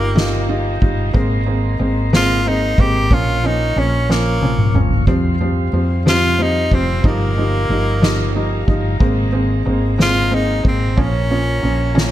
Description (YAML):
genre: six-eight pop ballad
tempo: 61 BPM (dotted quarters)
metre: 6/8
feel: straight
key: Ab major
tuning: A4 = 440 Hz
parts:
  - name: edgy tenor saxophone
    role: melody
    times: 0.0-12.1 s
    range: Bb3 to G4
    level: -20 LUFS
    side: equal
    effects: none
  - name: felt-muted upright piano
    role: accompaniment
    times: 0.0-12.1 s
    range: F3 to F4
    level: -21 LUFS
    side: right 1 dB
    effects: none
  - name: mellow tonewheel organ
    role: sustained chords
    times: 0.0-12.1 s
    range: F4 to Db6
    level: -27 LUFS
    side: equal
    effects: slow rotary speaker
  - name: woody fretless electric bass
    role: bass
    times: 0.0-12.1 s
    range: F1 to F2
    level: -19 LUFS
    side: equal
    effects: none
  - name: soft-mallet drum kit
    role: drums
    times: 0.2-12.1 s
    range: kick drum, ride cymbal, snare drum, toms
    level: -20 LUFS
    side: equal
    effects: none
room: studio reverb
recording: none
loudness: -14 LUFS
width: side -13 dB against mid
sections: 0.0-12.1 A section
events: drum fill 4.1-5.1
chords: 0.0 Ebadd9/G; 1.1 Abadd9; 3.1 Bbm; 5.1 Fsus2; 7.0 Ebadd9/G; 9.0 Abadd9; 11.0 Bbm